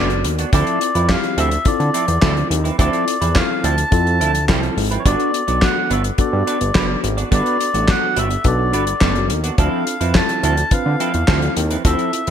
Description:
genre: early-eighties boogie funk.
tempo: 106 BPM.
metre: 4/4.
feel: straight.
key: G major.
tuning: A4 = 440 Hz.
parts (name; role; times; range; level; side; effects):
melodica; melody; 0.0-12.3 s; C#5 to A5; -22 LUFS; left 1 dB; digital delay.
tine electric piano; accompaniment; 0.0-12.2 s; B3 to B4; -24 LUFS; left 2 dB; slow stereo tremolo.
semi-hollow electric guitar; riff; 0.0-12.3 s; F3 to D5; -24 LUFS; right 6 dB; analog chorus.
fat analog bass; bass; 0.0-12.3 s; F#1 to D3; -20 LUFS; equal; none.
damped 70s drum kit; drums; 0.1-12.3 s; handclaps, hi-hat, kick drum, snare drum; -19 LUFS; equal; gated reverb.
room: light reverb, studio ambience.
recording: bright 1980s-style digital production.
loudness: -15 LUFS.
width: side -9 dB against mid.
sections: 0.0-12.3 A section.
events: none.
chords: 0.0 Gmaj7 (rootless); 0.5 Dm9; 5.1 Gmaj7; 9.6 Dm9.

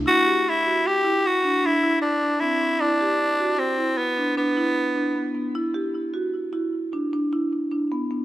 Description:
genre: progressive instrumental, progressive.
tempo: 153 BPM.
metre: 7/4.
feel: straight.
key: E minor.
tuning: A4 = 440 Hz.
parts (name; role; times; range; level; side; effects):
marimba with medium mallets; arpeggios; 0.0-8.2 s; B3 to G4; -24 LUFS; right 1 dB; tape echo.
raspy tenor saxophone; melody; 0.1-5.3 s; B3 to G4; -20 LUFS; equal; tape echo.
room: light reverb, studio ambience.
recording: rough home demo mix.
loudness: -20 LUFS.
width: side -14 dB against mid.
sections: 0.1-8.2 A section.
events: none.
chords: 0.1 C; 2.8 Em9.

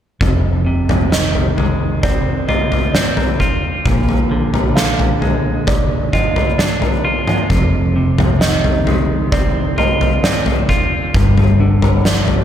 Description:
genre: post-rock.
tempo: 66 BPM.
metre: 4/4.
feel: straight.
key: F dorian.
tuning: A4 = 440 Hz.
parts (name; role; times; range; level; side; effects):
clean electric guitar; arpeggios; 0.2-12.4 s; F2 to F4; -19 LUFS; equal; analog delay.
hollow-body short-scale fingered electric bass; bass; 0.2-12.4 s; F1 to Bb1; -19 LUFS; equal; none.
oversized low-tuned drum kit; drums; 0.2-12.4 s; kick drum, snare drum, toms; -16 LUFS; left 1 dB; none.
felt-muted upright piano; arpeggios; 1.1-12.4 s; D5 to F5; -24 LUFS; right 7 dB; analog delay.
room: light reverb, small room ambience.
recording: none.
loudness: -13 LUFS.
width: side -10 dB against mid.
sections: 0.2-12.4 A section.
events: none.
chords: 0.2 Fm7; 3.9 Bb7; 7.5 Fm7; 11.1 G7(no3).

